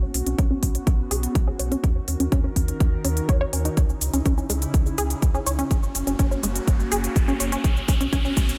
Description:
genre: progressive house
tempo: 124 BPM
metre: 4/4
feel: straight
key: unclear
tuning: A4 = 440 Hz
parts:
  - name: airy breathy pad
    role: sustained chords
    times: 0.0-8.6 s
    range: C#3 to A#4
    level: -34 LUFS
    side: equal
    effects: chorus, sidechain pumping
  - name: round analog bass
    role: bass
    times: 0.0-8.5 s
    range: F#1 to D#2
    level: -30 LUFS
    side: equal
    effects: tube saturation, sidechain pumping
  - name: electronic hi-hat and shaker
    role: drums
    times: 0.1-8.6 s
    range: none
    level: -32 LUFS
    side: equal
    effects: overdrive
  - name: tight sequenced synth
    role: arpeggios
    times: 0.3-8.4 s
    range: G#3 to C#5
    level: -31 LUFS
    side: equal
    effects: chorus, phaser, sidechain pumping, tape echo
  - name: electronic kick drum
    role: drums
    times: 0.4-8.5 s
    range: none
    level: -23 LUFS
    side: equal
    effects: none
  - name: riser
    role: sound effects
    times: 5.4-8.6 s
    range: none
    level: -37 LUFS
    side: equal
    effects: none
room: light reverb, digital ambience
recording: none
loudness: -23 LUFS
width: mono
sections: 0.0-8.6 A section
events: build-up 0.0-8.6; filter sweep on synth arpeggio sound 0.0-8.6; filter sweep on analog synth pad 0.0-8.6; drum fill 3.8-8.6; riser 5.4-8.6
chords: 0.0 Bsus2; 1.8 D#m; 3.8 C#madd9; 5.7 F#; 7.6 Bsus2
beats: 0.39 0.87 1.35 | 1.84 2.32 2.81 3.29 | 3.77 4.26 4.74 5.22 | 5.71 6.19 6.68 7.16 | 7.64 8.13

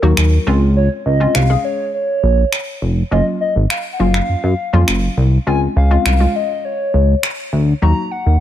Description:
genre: dance-pop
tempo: 102 BPM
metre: 4/4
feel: straight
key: Db major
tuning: A4 = 440 Hz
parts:
  - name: hollow clarinet-like synth lead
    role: melody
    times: 0.0-8.4 s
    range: Bb4 to Bb5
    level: -20 LUFS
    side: left 1 dB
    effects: chorus, phaser
  - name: hollow square pluck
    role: accompaniment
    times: 0.0-8.4 s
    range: Gb3 to Ab4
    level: -21 LUFS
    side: left 2 dB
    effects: chorus
  - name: chorused synth bass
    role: bass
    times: 0.0-8.4 s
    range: F1 to Gb2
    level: -13 LUFS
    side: equal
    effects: none
  - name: electronic finger snaps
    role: drums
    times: 0.2-7.4 s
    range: none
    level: -22 LUFS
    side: equal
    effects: overdrive
room: little or no reverb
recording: none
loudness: -13 LUFS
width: side -11 dB against mid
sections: 0.0-8.4 A section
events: none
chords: 0.5 Dbmaj7; 3.1 Gbmaj7; 5.5 Dbmaj7; 7.8 Ebm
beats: 0.17 | 0.76 1.35 1.94 2.53 | 3.12 3.70 4.29 4.88 | 5.47 6.06 6.64 7.23 | 7.82

